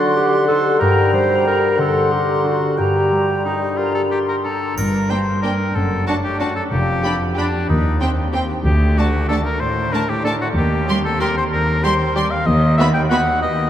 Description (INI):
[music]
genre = cinematic, playful, whimsical film cue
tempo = 62 BPM (dotted quarters)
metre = 6/8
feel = straight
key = G minor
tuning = A4 = 440 Hz
[part]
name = bright small flute group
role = second line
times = 0.0-4.8 s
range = Bb5 to C6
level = -26 LUFS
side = left 2 dB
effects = none
[part]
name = clear oboe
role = second line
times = 0.0-13.7 s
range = D4 to G5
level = -22 LUFS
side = left 1 dB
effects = none
[part]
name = warm clarinet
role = second line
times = 0.0-3.8 s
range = F#4 to C5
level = -21 LUFS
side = right 2 dB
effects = none
[part]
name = mellow bassoon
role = accompaniment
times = 0.0-4.5 s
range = D3 to G3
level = -22 LUFS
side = left 2 dB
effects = none
[part]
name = concert harp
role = arpeggios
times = 0.0-13.7 s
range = F2 to D5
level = -24 LUFS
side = left 1 dB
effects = none
[part]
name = clear studio cello section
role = bass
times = 4.8-13.7 s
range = D2 to A2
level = -21 LUFS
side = equal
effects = none
[part]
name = warm studio double bass section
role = bass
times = 4.8-13.1 s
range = F1 to Eb2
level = -22 LUFS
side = equal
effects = none
[part]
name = triangle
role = percussion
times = 4.8-6.0 s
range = none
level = -36 LUFS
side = right 7 dB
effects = none
[part]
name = rich studio violin section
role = melody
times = 5.1-13.2 s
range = G5 to C6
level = -28 LUFS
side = equal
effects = none
[part]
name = clear studio violin section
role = second line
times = 5.1-13.2 s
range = D4 to G4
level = -28 LUFS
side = right 2 dB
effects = none
[part]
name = rich studio viola section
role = accompaniment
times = 5.1-13.2 s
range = G3 to D4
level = -26 LUFS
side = right 2 dB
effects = none
[sound]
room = wet cathedral reverb, RT60 6.2 s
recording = in a vast, echoing space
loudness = -15 LUFS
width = side -10 dB against mid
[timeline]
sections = 0.0-4.8 A section; 4.8-13.7 A section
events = none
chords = 0.0 D7b9; 0.8 Gm; 1.8 D7; 2.8 Gm; 5.8 D/F#; 6.7 G7/F; 7.7 Cm/Eb; 8.7 D5; 10.6 Cm/Eb; 12.5 B/D#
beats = | 0.80 1.78 | 2.78 3.78 | 4.78 5.75 | 6.72 7.69 | 8.66 9.61 | 10.57 11.53 | 12.47 13.42